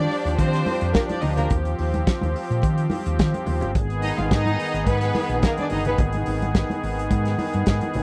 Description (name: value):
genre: disco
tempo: 107 BPM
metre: 4/4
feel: straight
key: Eb major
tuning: A4 = 439 Hz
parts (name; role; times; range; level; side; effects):
- bright symphonic string section; second line; 0.0-6.0 s; Bb3 to F5; -28 LUFS; equal; none
- pipe organ, strings celeste; sustained chords; 0.0-8.0 s; Eb3 to Ab4; -29 LUFS; equal; none
- hollow-body short-scale fingered electric bass; bass; 0.0-8.0 s; G1 to Eb3; -26 LUFS; equal; none
- warm soul drum kit; drums; 0.1-8.0 s; hi-hat, kick drum, snare drum; -25 LUFS; equal; none
- congas; percussion; 0.4-8.0 s; none; -34 LUFS; equal; none
room: small room reverb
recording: none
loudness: -23 LUFS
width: mono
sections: 0.0-8.0 A section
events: none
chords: 0.0 Ebmaj9; 3.8 Abm